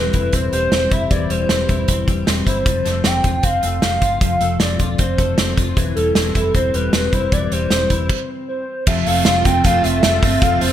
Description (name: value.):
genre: jangly indie pop.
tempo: 155 BPM.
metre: 4/4.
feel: straight.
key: unclear.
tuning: A4 = 440 Hz.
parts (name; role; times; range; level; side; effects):
hollow clarinet-like synth lead; melody; 0.0-10.7 s; A4 to G5; -20 LUFS; equal; chorus.
twelve-string electric guitar; arpeggios; 0.0-10.7 s; E3 to F4; -24 LUFS; left 4 dB; ensemble chorus, ping-pong delay.
vintage muted fingered electric bass; bass; 0.0-10.7 s; E1 to G1; -22 LUFS; equal; none.
loose indie drum kit; drums; 0.1-10.7 s; crash cymbal, hi-hat, kick drum, snare drum; -18 LUFS; right 1 dB; gated reverb.
picked steel-string acoustic guitar; accompaniment; 8.9-10.7 s; F2 to F4; -22 LUFS; right 7 dB; none.
ensemble organ-string; sustained chords; 8.9-10.7 s; F4 to A5; -27 LUFS; right 1 dB; ensemble chorus.
room: moderate plate reverb, RT60 1.9 s, studio reverb.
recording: bright 1980s-style digital production.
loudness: -15 LUFS.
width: side -11 dB against mid.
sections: 0.0-8.9 A section; 8.9-10.7 B section.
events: stop 8.1-8.9.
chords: 0.0 C/E; 2.7 F; 5.8 C/E; 8.9 F.